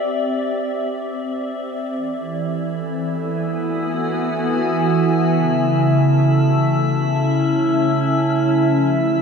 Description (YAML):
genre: ambient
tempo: 54 BPM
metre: 3/4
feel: straight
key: unclear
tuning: A4 = 440 Hz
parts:
  - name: glassy FM pad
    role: sustained chords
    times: 0.0-9.2 s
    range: C#3 to G#5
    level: -18 LUFS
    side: equal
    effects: ensemble chorus, built-in reverb
  - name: overtone-sweeping drone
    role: drone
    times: 2.5-9.2 s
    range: A3 to A4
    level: -29 LUFS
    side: left 1 dB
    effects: chorus, built-in reverb, phaser
  - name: drifting glass-harmonics texture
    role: texture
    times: 2.6-9.2 s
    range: E4 to E5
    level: -22 LUFS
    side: equal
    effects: chorus, built-in reverb
room: wet cathedral reverb, RT60 5.1 s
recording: in a vast, echoing space, cassette tape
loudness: -17 LUFS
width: side -6 dB against mid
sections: 0.0-1.9 A section; 1.9-9.2 B section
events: none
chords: 0.0 C; 1.9 E7; 5.3 C#m; 8.6 Fadd9